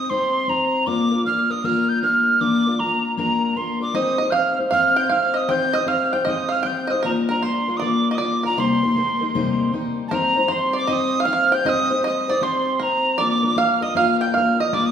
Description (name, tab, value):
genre	celtic folk, Celtic hornpipe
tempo	156 BPM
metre	4/4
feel	swing 64% on 8ths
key	C minor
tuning	A4 = 440 Hz
part	reedy wooden whistle	melody	0.0-14.9 s	A5 to G6	-21 LUFS	right 2 dB	none
part	picked steel-string acoustic guitar	accompaniment	0.0-14.9 s	C3 to C5	-22 LUFS	left 3 dB	none
part	bluegrass banjo	second line	3.9-14.8 s	Bb4 to G5	-24 LUFS	right 4 dB	none
room	wet recital hall reverb, RT60 1.4 s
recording	recorded in a church or concert hall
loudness	-18 LUFS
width	side -8 dB against mid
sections	0.0-10.1 A section; 10.1-14.9 A section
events	none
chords	0.0 Cm; 0.9 Bb; 3.9 Cm; 7.0 Bb; 8.6 Cm7; 10.1 Cm; 13.2 Bb